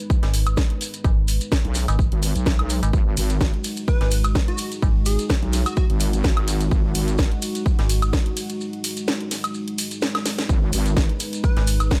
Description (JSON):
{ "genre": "bass house", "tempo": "127 BPM", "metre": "4/4", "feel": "swing 55% on 16ths", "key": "G# minor", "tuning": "A4 = 439 Hz", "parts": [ { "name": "dark analog pad", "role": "sustained chords", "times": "0.0-12.0 s", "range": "G#3 to B4", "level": "-33 LUFS", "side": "equal", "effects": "chorus, sidechain pumping" }, { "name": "electronic kick drum", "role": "drums", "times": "0.1-12.0 s", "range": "none", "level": "-22 LUFS", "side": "equal", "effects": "overdrive" }, { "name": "maracas", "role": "percussion", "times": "0.1-12.0 s", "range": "none", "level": "-36 LUFS", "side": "equal", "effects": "none" }, { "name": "metallic FM bass", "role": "bass", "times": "0.2-8.1, 11.6-11.9 s", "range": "G#1", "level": "-23 LUFS", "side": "equal", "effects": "overdrive, sidechain pumping" }, { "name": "house drum kit", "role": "drums", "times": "0.2-12.0 s", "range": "hi-hat, ride cymbal, snare drum, woodblock", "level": "-29 LUFS", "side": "equal", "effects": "overdrive" }, { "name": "wobble bass", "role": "bass", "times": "1.6-7.3, 10.5-11.1 s", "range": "G#1 to B1", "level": "-25 LUFS", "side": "equal", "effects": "chorus, overdrive, sidechain pumping" }, { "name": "plucky unison lead", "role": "melody", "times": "3.9-5.9, 11.4-11.8 s", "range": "F#4 to B4", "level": "-34 LUFS", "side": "equal", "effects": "subtle chorus, digital delay" } ], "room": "digital ambience", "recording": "none", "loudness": "-22 LUFS", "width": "mono", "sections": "0.0-12.0 A section", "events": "break 8.6-10.5; drum fill 10.1-10.5", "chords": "0.0 G#m" }